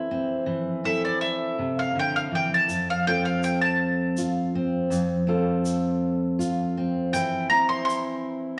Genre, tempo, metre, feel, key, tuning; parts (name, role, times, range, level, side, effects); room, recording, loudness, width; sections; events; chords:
acoustic folk duo or small band; 54 BPM (dotted quarters); 6/8; straight; F major; A4 = 442 Hz
mandolin; melody; 0.0-8.6 s; C5 to C6; -26 LUFS; equal
fingerpicked steel-string acoustic guitar; accompaniment; 0.0-8.6 s; F2 to A4; -27 LUFS; equal
egg shaker; percussion; 2.7-8.1 s; -44 LUFS; equal
wet large studio reverb, RT60 1.4 s; -25 LUFS; mono
0.0-8.6 A section
mandolin solo 0.0-8.6
0.0 C6/E; 2.7 F; 7.1 C6/E